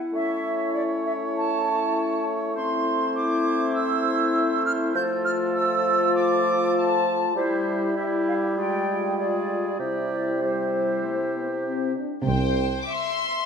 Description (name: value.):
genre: cinematic, playful, whimsical film cue.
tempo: 99 BPM.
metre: 4/4.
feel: straight.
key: C major.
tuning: A4 = 442 Hz.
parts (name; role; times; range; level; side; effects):
clear clarinet; second line; 0.0-11.9 s; E4 to F4; -30 LUFS; left 3 dB; none.
warm French horn section; sustained chords; 0.0-12.1 s; G3 to F4; -29 LUFS; left 3 dB; none.
bright small flute group; second line; 0.1-12.0 s; C5 to G6; -27 LUFS; right 2 dB; none.
warm oboe; second line; 0.1-11.9 s; G4 to C#5; -34 LUFS; right 2 dB; none.
mellow bassoon; accompaniment; 0.1-11.9 s; C3 to A3; -27 LUFS; right 1 dB; none.
warm studio violin section; melody; 12.3-13.5 s; G5 to D6; -28 LUFS; left 4 dB; none.
rich studio violin section; second line; 12.3-13.5 s; C5 to E5; -28 LUFS; left 2 dB; none.
clear tuba; bass; 12.3-12.8 s; C2; -28 LUFS; right 4 dB; none.
dark studio cello section; bass; 12.3-12.8 s; C3; -29 LUFS; right 3 dB; none.
warm studio double bass section; bass; 12.3-12.8 s; C2; -29 LUFS; right 3 dB; none.
room: wet scoring stage reverb, RT60 1.6 s.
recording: minimal, uncompressed stereo recording.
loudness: -22 LUFS.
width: side -6 dB against mid.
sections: 0.0-12.3 A section; 12.3-13.5 B section.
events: none.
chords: 0.1 A; 2.6 Am; 5.0 Dm/F; 7.4 C/G; 8.6 G5; 9.8 C.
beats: | 0.14 0.74 1.35 1.95 | 2.55 3.15 3.75 4.36 | 4.96 5.56 6.16 6.76 | 7.37 7.97 8.58 9.19 | 9.80 10.42 11.04 11.65 | 12.27 12.89.